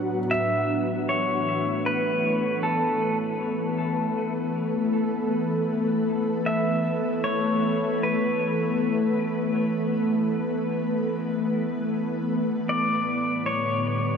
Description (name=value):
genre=ambient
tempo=78 BPM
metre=4/4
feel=straight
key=A mixolydian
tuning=A4 = 440 Hz
part: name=ethereal airy pad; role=sustained chords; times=0.0-14.2 s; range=A2 to F#5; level=-24 LUFS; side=equal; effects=ensemble chorus, built-in reverb
part: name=pedal steel guitar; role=melody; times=0.3-14.2 s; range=A4 to E5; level=-28 LUFS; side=left 1 dB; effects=ping-pong delay
room=wet huge ambient reverb, RT60 8.5 s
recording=none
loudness=-23 LUFS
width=side -6 dB against mid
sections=0.3-14.2 A section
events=none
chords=0.3 Asus2; 12.7 G/A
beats=| 0.29 1.07 1.85 2.63 | 3.40 4.16 4.93 5.70 | 6.46 7.24 8.01 8.77 | 9.54 10.31 11.09 11.87 | 12.66 13.45